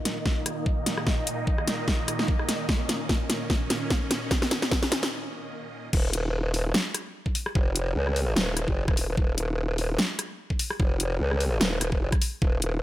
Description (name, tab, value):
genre	heavy wobble dubstep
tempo	148 BPM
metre	4/4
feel	swing 55% on 16ths, half-time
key	unclear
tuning	A4 = 440 Hz
part	supersaw chords	sustained chords	0.0-5.9 s	Bb2 to Eb5	-32 LUFS	right 1 dB	phaser, sidechain pumping, low-pass filter
part	dubstep drum kit	drums	0.1-12.7 s	crash cymbal, hi-hat, rim click, snare drum	-27 LUFS	equal	none
part	electronic kick drum	drums	0.3-12.5 s	none	-26 LUFS	equal	overdrive
part	formant-sweep wobble bass	bass	5.9-12.8 s	Eb1 to Db2	-26 LUFS	equal	chorus, overdrive
room	light reverb, digital ambience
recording	none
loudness	-24 LUFS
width	side -15 dB against mid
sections	0.0-5.9 A section; 5.9-12.8 B section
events	build-up 0.0-5.9; drum fill 0.0-5.1; filter sweep on supersaw synth 0.0-5.9; break 5.1-5.9; drop 5.9-12.8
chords	0.0 Eb5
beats	0.26 0.66 | 1.07 1.47 1.88 2.28 | 2.69 3.09 3.50 3.90 | 4.31 4.71 5.12 5.53 | 5.93 6.34 6.74 7.15 | 7.55 7.96 8.36 8.77 | 9.18 9.58 9.99 10.39 | 10.80 11.20 11.61 12.01 | 12.42 12.82